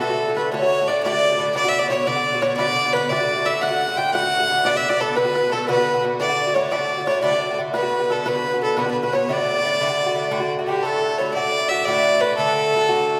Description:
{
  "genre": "celtic folk, Celtic slip jig",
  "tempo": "116 BPM (dotted quarters)",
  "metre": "9/8",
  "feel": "straight",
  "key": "D major",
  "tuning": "A4 = 437 Hz",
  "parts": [
    { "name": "rich fiddle", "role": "melody", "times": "0.0-13.2 s", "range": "G4 to G5", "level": "-22 LUFS", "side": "equal", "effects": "none" },
    { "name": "alto recorder", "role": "second line", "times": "0.0-13.2 s", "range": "G4 to G5", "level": "-29 LUFS", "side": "equal", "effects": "none" },
    { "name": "bluegrass banjo", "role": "second line", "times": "0.0-10.5 s", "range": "A4 to G5", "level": "-32 LUFS", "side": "equal", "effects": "none" },
    { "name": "Irish bouzouki", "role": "accompaniment", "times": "0.0-13.2 s", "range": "A2 to F#4", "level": "-27 LUFS", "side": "equal", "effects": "none" }
  ],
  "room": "wet scoring stage reverb, RT60 1.8 s",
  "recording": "recorded in a church or concert hall",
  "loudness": "-20 LUFS",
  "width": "mono",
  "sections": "0.0-10.8 A section; 10.8-13.2 B section",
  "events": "none",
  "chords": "0.0 D; 1.6 Bm; 3.1 D; 4.6 Bm; 6.2 D; 7.7 Bm; 9.3 D"
}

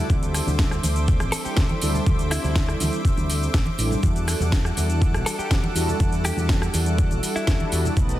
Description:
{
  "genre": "nu-disco, nu disco",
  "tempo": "122 BPM",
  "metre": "4/4",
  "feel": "straight",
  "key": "E minor",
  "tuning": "A4 = 440 Hz",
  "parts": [
    { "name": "direct-recorded clean electric guitar", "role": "melody", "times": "0.0-8.0 s", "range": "E4 to A4", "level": "-32 LUFS", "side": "equal", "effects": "spring reverb, digital delay" },
    { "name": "mellow synth brass", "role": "accompaniment", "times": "0.0-8.2 s", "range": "G3 to B4", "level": "-29 LUFS", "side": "right 1 dB", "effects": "chorus, sidechain pumping, tape echo" },
    { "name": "lush unison pad", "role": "sustained chords", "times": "0.0-8.2 s", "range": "A4 to D6", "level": "-32 LUFS", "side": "equal", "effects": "chorus, sidechain pumping" },
    { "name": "fingered electric bass with an envelope filter", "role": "bass", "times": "0.1-8.2 s", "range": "A1 to E2", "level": "-25 LUFS", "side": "equal", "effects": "tube saturation" },
    { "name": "electronic kick drum", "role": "drums", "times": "0.1-8.1 s", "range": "none", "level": "-21 LUFS", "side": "equal", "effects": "overdrive, small room ambience" },
    { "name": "house drum kit", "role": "drums", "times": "0.1-8.2 s", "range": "cabasa, hi-hat, rim click, snare drum", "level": "-29 LUFS", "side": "equal", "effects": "small room ambience" },
    { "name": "maracas and congas", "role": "percussion", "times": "0.1-8.2 s", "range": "none", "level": "-32 LUFS", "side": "right 2 dB", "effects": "none" }
  ],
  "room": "little or no reverb",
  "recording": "dense, heavily limited modern master",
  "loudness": "-20 LUFS",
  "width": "side -14 dB against mid",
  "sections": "0.0-8.2 A section",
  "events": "none",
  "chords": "0.1 D9sus4; 4.0 Em11"
}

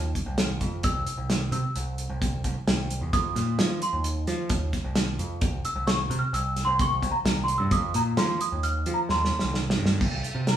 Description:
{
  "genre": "progressive instrumental, band music in an uneven meter",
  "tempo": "131 BPM",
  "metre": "5/4",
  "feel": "straight",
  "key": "unclear",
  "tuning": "A4 = 436 Hz",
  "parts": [
    { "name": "growling picked electric bass", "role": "bass", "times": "0.0-10.6 s", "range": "C2 to F3", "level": "-28 LUFS", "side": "right 1 dB", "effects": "overdrive" },
    { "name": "warm soul drum kit", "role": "drums", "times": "0.2-10.6 s", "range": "crash cymbal, hi-hat, kick drum, snare drum", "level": "-27 LUFS", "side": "equal", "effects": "none" },
    { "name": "worn celesta", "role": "melody", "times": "0.8-10.6 s", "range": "Bb5 to F6", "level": "-28 LUFS", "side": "right 1 dB", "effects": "none" }
  ],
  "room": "wet studio reverb, RT60 0.9 s",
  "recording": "band playing live in one room, studio reverb",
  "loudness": "-24 LUFS",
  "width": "side -10 dB against mid",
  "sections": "0.0-10.0 A section",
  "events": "celesta solo 0.0-10.0; drum fill 9.1-10.0",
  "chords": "0.0 F5; 0.8 C; 3.1 F5; 5.4 C5; 7.7 F5; 10.0 C5"
}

